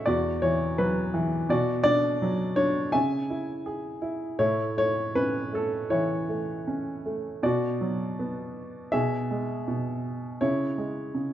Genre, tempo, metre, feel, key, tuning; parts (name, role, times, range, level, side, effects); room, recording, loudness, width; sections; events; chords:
classical, lyrical solo piano; 81 BPM; 4/4; rubato; B dorian; A4 = 440 Hz
warm upright piano; solo; 0.0-11.3 s; E2 to G#5; -25 LUFS; equal
moderate recital hall reverb, RT60 1.4 s; -25 LUFS; side -12 dB against mid
0.0-7.4 A section; 7.4-11.3 B section
0.1 Esus2; 1.5 Bm; 2.9 C#m; 4.4 A; 7.4 Bm; 8.9 E/B; 10.4 C#m